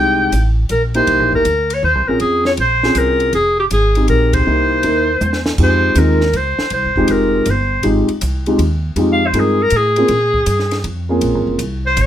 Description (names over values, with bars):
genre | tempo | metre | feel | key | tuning
jazz, small-group swing and bop | 160 BPM | 3/4 | swing 66% on 8ths | F minor | A4 = 438 Hz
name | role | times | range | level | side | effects
bright clarinet | melody | 0.0-12.1 s | G4 to G5 | -15 LUFS | equal | none
dark grand piano | accompaniment | 0.0-11.6 s | Ab3 to Bb4 | -16 LUFS | equal | none
upright bass | bass | 0.0-12.1 s | F1 to Bb2 | -18 LUFS | equal | none
compact cocktail drum kit | drums | 0.3-12.1 s | crash cymbal, hi-hat, kick drum, ride cymbal, snare drum, toms | -25 LUFS | equal | none
room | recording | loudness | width
light reverb | none | -12 LUFS | side -10 dB against mid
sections
0.0-5.6 A section; 5.6-12.1 B section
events
band accent 4.3; drum fill 5.2-5.6; clarinet solo 5.6-12.1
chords
0.0 Fm9 (rootless); 1.1 C7#9; 2.2 Bbm9; 3.3 Fm9; 4.5 C7#9; 5.6 Fm9; 10.1 Bbm9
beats
0.33 0.70 | 1.08 1.46 1.83 | 2.21 2.58 2.96 | 3.33 3.71 4.08 | 4.46 4.84 5.21 | 5.59 5.96 6.34 | 6.71 7.09 7.46 | 7.84 8.22 8.59 | 8.97 9.34 9.72 | 10.10 10.47 10.85 | 11.22 11.60 11.97